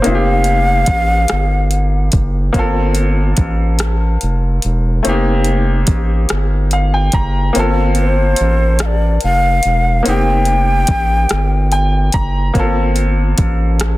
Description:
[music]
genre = slow six-eight R&B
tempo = 48 BPM (dotted quarters)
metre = 6/8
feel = straight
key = G minor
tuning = A4 = 445 Hz
[part]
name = breathy shakuhachi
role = melody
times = 0.0-2.1, 8.0-12.1 s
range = C5 to G5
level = -17 LUFS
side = left 1 dB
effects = slapback echo
[part]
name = clear grand piano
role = accompaniment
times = 0.0-14.0 s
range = A3 to Bb5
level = -19 LUFS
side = left 1 dB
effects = none
[part]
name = smooth R&B drum kit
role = drums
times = 0.0-14.0 s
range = hi-hat, kick drum, rim click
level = -18 LUFS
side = equal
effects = none
[part]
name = round analog bass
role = bass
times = 0.1-14.0 s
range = E1 to A1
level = -15 LUFS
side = equal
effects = none
[sound]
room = digital ambience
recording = dense, heavily limited modern master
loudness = -12 LUFS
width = side -17 dB against mid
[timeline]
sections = 0.0-14.0 A section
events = grand piano fill 6.3-7.5, 11.3-12.5; kick muted 7.5-10.0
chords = 0.0 F9sus4; 2.5 Gm11; 5.0 F9sus4; 7.5 Gm11; 10.0 F9sus4; 12.5 Gm11

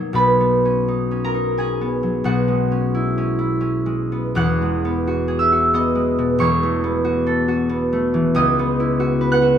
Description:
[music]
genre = classical, solo harp piece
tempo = 71-95 BPM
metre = 3/4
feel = rubato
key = B major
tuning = A4 = 440 Hz
[part]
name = concert harp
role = solo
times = 0.0-9.6 s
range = E1 to F#6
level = -16 LUFS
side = equal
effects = none
[sound]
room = wet stone room reverb, RT60 1.3 s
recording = none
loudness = -17 LUFS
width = side -9 dB against mid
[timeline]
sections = 0.2-9.6 A section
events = none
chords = 0.2 Badd9; 2.3 E69/B; 4.4 Eadd9; 6.4 A69/E; 8.3 C#m11

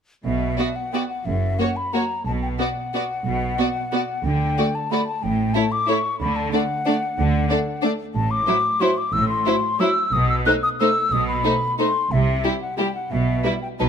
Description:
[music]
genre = classical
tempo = 182 BPM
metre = 3/4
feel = uneven beats, rubato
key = B minor, E minor from 8.2 s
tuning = A4 = 440 Hz
[part]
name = mellow hollow silver concert flute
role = second line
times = 0.2-13.9 s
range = E5 to F#6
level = -23 LUFS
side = left 3 dB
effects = none
[part]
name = rich studio double bass section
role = bass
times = 0.2-13.9 s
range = F#1 to D2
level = -26 LUFS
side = right 3 dB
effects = none
[part]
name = rich studio cello section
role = bass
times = 0.3-13.9 s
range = F#2 to D3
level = -26 LUFS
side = right 1 dB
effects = none
[part]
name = rich studio violin section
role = melody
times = 0.6-13.9 s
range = G4 to D5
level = -30 LUFS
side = left 3 dB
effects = none
[part]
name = warm studio violin section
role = second line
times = 0.6-13.9 s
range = D4 to F#4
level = -27 LUFS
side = left 1 dB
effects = none
[part]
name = dark studio viola section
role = accompaniment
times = 0.6-13.9 s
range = F#3 to B3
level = -26 LUFS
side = right 2 dB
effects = none
[sound]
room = light reverb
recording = close, detailed microphones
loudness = -19 LUFS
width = side -7 dB against mid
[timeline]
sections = 0.2-13.9 A section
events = none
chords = 0.2 B5; 1.3 F#7; 2.3 B5; 4.3 D5; 5.2 A7; 6.2 D; 8.2 F#m7b5/A; 10.1 B7b9; 12.1 C; 13.1 E5/B

